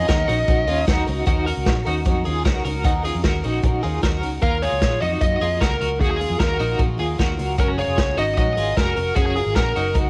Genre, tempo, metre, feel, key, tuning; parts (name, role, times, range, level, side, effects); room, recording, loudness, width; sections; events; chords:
jangly indie pop; 152 BPM; 4/4; straight; Eb minor; A4 = 440 Hz
high-gain lead guitar; melody; 0.0-0.8, 4.4-9.9 s; Ab4 to Eb5; -26 LUFS; equal; distortion, cassette tape
picked twelve-string acoustic guitar; accompaniment; 0.0-10.1 s; Eb3 to Bb4; -34 LUFS; equal; subtle chorus, cassette tape
twelve-string electric guitar; arpeggios; 0.0-10.1 s; Bb3 to Bb4; -28 LUFS; equal; tremolo, cassette tape
vintage muted fingered electric bass; bass; 0.0-10.1 s; F1 to Gb2; -28 LUFS; equal
vintage drum kit; drums; 0.1-10.0 s; hi-hat, kick drum, snare drum; -25 LUFS; equal; cassette tape
little or no reverb; home recording on cassette, vinyl crackle; -20 LUFS; mono
0.0-1.3 A section; 1.3-4.4 B section; 4.4-10.1 C section
0.0 Ebm7; 7.6 Gbadd9